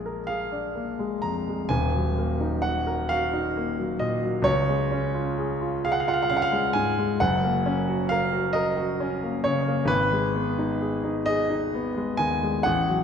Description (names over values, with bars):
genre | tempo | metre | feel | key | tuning
classical, romantic nocturne for solo piano | 44 BPM (dotted quarters) | 6/8 | rubato | unclear | A4 = 440 Hz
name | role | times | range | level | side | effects
warm grand piano | solo | 0.0-13.0 s | Eb1 to Bb5 | -23 LUFS | equal | none
room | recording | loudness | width
wet scoring stage reverb, RT60 1.7 s | nothing above 10.4 kHz | -23 LUFS | side -7 dB against mid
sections
0.0-13.0 A section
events
none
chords
0.0 Bb7; 1.7 Ebm; 4.5 Db; 7.2 Gb; 9.9 Abm